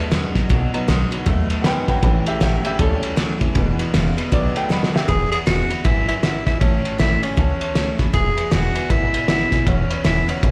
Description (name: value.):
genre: rockabilly.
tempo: 157 BPM.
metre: 4/4.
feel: swing 62% on 8ths.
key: E major.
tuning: A4 = 440 Hz.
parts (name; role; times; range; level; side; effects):
clear upright piano; accompaniment; 0.0-10.5 s; D#3 to B5; -29 LUFS; equal; slapback echo.
picked steel-string acoustic guitar; accompaniment; 0.0-10.5 s; E2 to F#4; -29 LUFS; equal; none.
twangy electric guitar; riff; 0.0-5.1 s; E2 to A3; -29 LUFS; equal; subtle chorus.
upright bass; bass; 0.1-10.5 s; E1 to F#2; -25 LUFS; equal; none.
cloth-damped thuddy drum kit; drums; 0.1-10.5 s; kick drum, ride cymbal, snare drum; -23 LUFS; equal; none.
raspy tenor saxophone; melody; 5.1-10.5 s; C#4 to G#4; -24 LUFS; equal; slapback echo.
room: light reverb, studio reverb.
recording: live gig heard through the venue's PA, club reverb.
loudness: -19 LUFS.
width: mono.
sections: 0.0-5.1 A section; 5.1-10.5 B section.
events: upright piano solo 0.0-5.1; drum fill 4.7-5.1.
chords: 0.0 B; 2.0 A; 3.6 E; 4.3 B; 5.1 E; 6.6 A; 8.1 E.